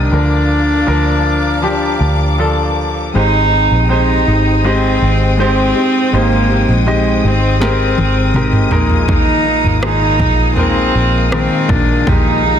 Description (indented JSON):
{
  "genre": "pop ballad",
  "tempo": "80 BPM",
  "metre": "4/4",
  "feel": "straight",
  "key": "unclear",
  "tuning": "A4 = 440 Hz",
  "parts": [
    { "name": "warm cello", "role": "melody", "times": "0.0-12.6 s", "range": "Ab3 to Eb4", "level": "-16 LUFS", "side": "right 1 dB", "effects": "none" },
    { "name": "bright concert grand piano", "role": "accompaniment", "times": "0.0-12.6 s", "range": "Ab2 to Eb5", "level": "-19 LUFS", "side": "left 1 dB", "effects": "none" },
    { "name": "dark studio string section", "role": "sustained chords", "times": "0.0-12.6 s", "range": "Bb3 to Eb6", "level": "-24 LUFS", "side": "left 4 dB", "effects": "none" },
    { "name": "vintage muted fingered electric bass", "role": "bass", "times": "0.0-12.6 s", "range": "Ab1 to D2", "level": "-16 LUFS", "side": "equal", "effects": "none" },
    { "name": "fingerpicked plugged-in steel-string acoustic guitar", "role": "arpeggios", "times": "3.1-12.6 s", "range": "Bb2 to Ab4", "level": "-20 LUFS", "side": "left 3 dB", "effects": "ping-pong delay" },
    { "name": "house drum kit", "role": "drums", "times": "7.6-12.2 s", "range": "kick drum, rim click, snare drum, toms", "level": "-17 LUFS", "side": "right 1 dB", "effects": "soft clipping on snare" }
  ],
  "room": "light reverb, small room ambience",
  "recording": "dense, heavily limited modern master",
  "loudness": "-11 LUFS",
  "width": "side -9 dB against mid",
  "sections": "0.0-3.1 A section; 3.1-12.6 B section",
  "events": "drum fill 7.6-9.1",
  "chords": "0.1 Bb/D; 3.1 Abmaj7; 8.7 Bb7sus4",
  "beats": "| 0.12 0.87 1.62 2.39 | 3.15 3.90 4.64 5.39 | 6.13 6.87 7.61 8.35 | 9.09 9.83 10.57 11.32 | 12.07"
}